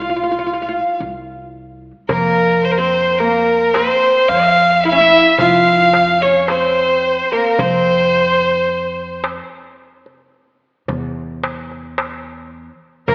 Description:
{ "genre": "Arabic maqam ensemble", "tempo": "109 BPM (eighths)", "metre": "10/8", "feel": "straight", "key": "unclear", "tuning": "A4 = 438 Hz", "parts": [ { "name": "clear violin", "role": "melody", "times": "0.0-13.1 s", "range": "Bb4 to F5", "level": "-16 LUFS", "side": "equal", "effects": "none" }, { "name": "oud", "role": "second line", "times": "0.0-13.1 s", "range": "Bb3 to F4", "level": "-23 LUFS", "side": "equal", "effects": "none" }, { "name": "upright bass", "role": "bass", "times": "0.0-13.1 s", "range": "C2 to F2", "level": "-27 LUFS", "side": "equal", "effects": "none" }, { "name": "clear studio violin section", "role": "second line", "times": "2.1-13.1 s", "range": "Bb4 to F5", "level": "-24 LUFS", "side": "equal", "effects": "none" }, { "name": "darbuka", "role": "percussion", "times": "2.1-13.1 s", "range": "none", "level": "-28 LUFS", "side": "equal", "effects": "none" } ], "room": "wet scoring stage reverb, RT60 2.0 s", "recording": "AM radio sound", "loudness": "-15 LUFS", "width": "mono", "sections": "0.0-2.1 A section; 2.1-13.1 B section", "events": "none", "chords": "none", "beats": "0.45 1.00 1.55 | 2.10 2.65 3.20 3.75 4.30 4.85 5.40 5.95 6.49 7.04 | 7.59 8.14 8.69 9.24 9.79 10.34 10.88 11.43 11.98 12.53 | 13.08" }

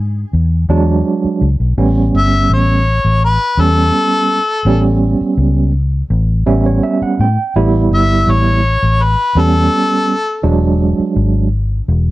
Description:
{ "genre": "straight-eighth soul blues", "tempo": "83 BPM", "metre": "4/4", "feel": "straight", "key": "unclear", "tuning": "A4 = 436 Hz", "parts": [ { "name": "vintage muted fingered electric bass", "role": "bass", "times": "0.0-12.1 s", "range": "E1 to A2", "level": "-13 LUFS", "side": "left 1 dB", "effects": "none" }, { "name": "overdriven tine electric piano", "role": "accompaniment", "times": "0.7-11.5 s", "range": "F#3 to G5", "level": "-15 LUFS", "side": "right 4 dB", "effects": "fast tremolo" }, { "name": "warm harmonica", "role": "melody", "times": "2.2-10.4 s", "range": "A4 to E5", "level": "-15 LUFS", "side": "left 2 dB", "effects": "overdrive" } ], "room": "little or no reverb", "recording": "dry, close 1970s-style studio recording", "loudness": "-11 LUFS", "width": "side -17 dB against mid", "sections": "0.0-12.1 A section", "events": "tine electric piano fill 6.1-7.6", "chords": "0.0 E9; 1.8 A9; 10.4 E9", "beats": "0.33 1.06 | 1.78 2.50 3.22 3.95 | 4.67 5.39 6.11 6.83 | 7.56 8.28 9.00 9.72 | 10.45 11.17 11.89" }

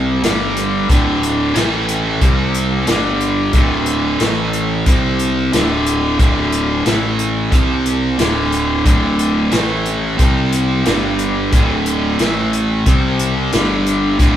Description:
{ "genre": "blues rock power trio and southern rock", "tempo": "90 BPM", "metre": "4/4", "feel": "straight", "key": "unclear", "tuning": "A4 = 438 Hz", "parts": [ { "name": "distorted electric guitar", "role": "riff", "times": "0.0-14.4 s", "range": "D2 to C4", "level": "-16 LUFS", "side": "equal", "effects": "distortion" }, { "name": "fuzz picked electric bass", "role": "bass", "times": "0.0-14.4 s", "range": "D1 to C2", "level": "-21 LUFS", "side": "equal", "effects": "overdrive" }, { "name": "vintage drum kit", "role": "drums", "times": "0.2-14.4 s", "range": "hi-hat, kick drum, snare drum", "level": "-16 LUFS", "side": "equal", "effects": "none" } ], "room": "light reverb", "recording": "band playing live in one room", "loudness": "-13 LUFS", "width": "side -11 dB against mid", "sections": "0.0-14.4 A section", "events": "none", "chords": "0.2 G5; 0.9 D5; 1.6 A5; 2.2 C5; 2.9 G5; 3.5 D5; 4.2 A5; 4.9 C5; 5.5 D5; 6.9 A5; 7.5 C5; 8.2 D5; 9.5 A5; 10.2 C5; 10.9 G5; 11.5 D5; 12.2 A5; 12.9 C5; 13.5 G5", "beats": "0.23 | 0.89 1.55 2.21 2.87 | 3.54 4.20 4.86 5.53 | 6.19 6.86 7.53 8.19 | 8.86 9.53 10.20 10.86 | 11.53 12.20 12.87 13.53 | 14.20" }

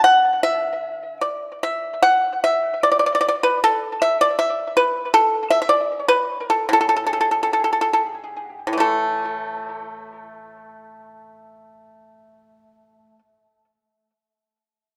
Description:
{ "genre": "chinese traditional, Chinese solo plucked strings", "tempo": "49-79 BPM", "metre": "2/4", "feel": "rubato", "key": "A zhi mode", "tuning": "A4 = 441 Hz", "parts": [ { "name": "pipa", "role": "solo", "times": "0.0-13.2 s", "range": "A2 to F#5", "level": "-20 LUFS", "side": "equal", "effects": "tape echo" } ], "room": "moderate recital hall reverb, RT60 1.6 s", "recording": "none", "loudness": "-20 LUFS", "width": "mono", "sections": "0.0-8.8 A section; 8.8-13.5 B section", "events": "slowing down 5.1-8.8", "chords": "none", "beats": "| 0.41 1.20 | 2.00 2.80 | 3.58 4.33 | 5.09 5.87 | 6.70 7.66 | 8.78 9.97 | 11.14 12.33" }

